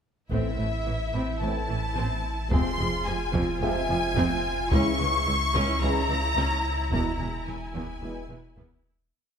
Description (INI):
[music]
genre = cinematic, hybrid orchestral and electronic film score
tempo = 109 BPM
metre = 4/4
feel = straight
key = unclear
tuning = A4 = 436 Hz
[part]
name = clear symphonic violin section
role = melody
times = 0.3-8.6 s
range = E5 to C#6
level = -32 LUFS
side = left 3 dB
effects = none
[part]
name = rich symphonic violin section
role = second line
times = 0.3-8.6 s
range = E5 to C#6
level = -32 LUFS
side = left 2 dB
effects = none
[part]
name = rich symphonic viola section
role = accompaniment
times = 0.3-8.9 s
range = E3 to F4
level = -32 LUFS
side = right 1 dB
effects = none
[part]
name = dark trombone section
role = sustained chords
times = 0.3-8.2 s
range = A2 to F3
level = -36 LUFS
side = right 3 dB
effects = none
[part]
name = mellow French horn section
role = sustained chords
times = 0.3-8.2 s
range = G#3 to E4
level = -36 LUFS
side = left 4 dB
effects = none
[part]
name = pure sine sub bass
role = bass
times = 0.3-9.1 s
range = E1 to C#2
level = -33 LUFS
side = equal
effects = none
[part]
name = rich symphonic cello section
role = bass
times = 0.3-8.7 s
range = C#2 to A2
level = -33 LUFS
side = right 2 dB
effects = none
[part]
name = rich symphonic double bass section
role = bass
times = 0.3-8.6 s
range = E1 to C#2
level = -34 LUFS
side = right 3 dB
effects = none
[part]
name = taiko ensemble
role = drums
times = 0.3-9.1 s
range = none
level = -31 LUFS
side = equal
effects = none
[part]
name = clear concert grand piano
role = texture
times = 1.1-9.2 s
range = Ab4 to C#6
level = -40 LUFS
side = right 1 dB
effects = ping-pong delay
[sound]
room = moderate scoring stage reverb, RT60 1.9 s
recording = none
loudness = -24 LUFS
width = side -7 dB against mid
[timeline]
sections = 0.3-9.1 theme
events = fade-out 6.9-9.1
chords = 0.3 Am; 2.5 Fm; 4.7 C#m; 6.9 E